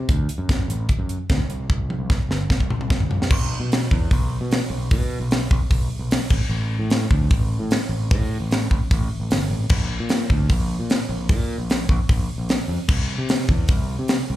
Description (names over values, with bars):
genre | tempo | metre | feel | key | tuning
math rock and midwest emo | 150 BPM | 4/4 | straight | C lydian | A4 = 439 Hz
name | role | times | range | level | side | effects
growling fingered electric bass | bass | 0.0-14.4 s | G1 to C3 | -23 LUFS | equal | overdrive
crisp fusion drum kit | drums | 0.1-14.2 s | crash cymbal, hi-hat, kick drum, snare drum, toms | -21 LUFS | equal | none
room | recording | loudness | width
little or no reverb | live gig heard through the venue's PA, club reverb | -19 LUFS | side -14 dB against mid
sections
0.0-3.3 A section; 3.3-14.4 B section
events
drum fill 1.7-3.3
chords
none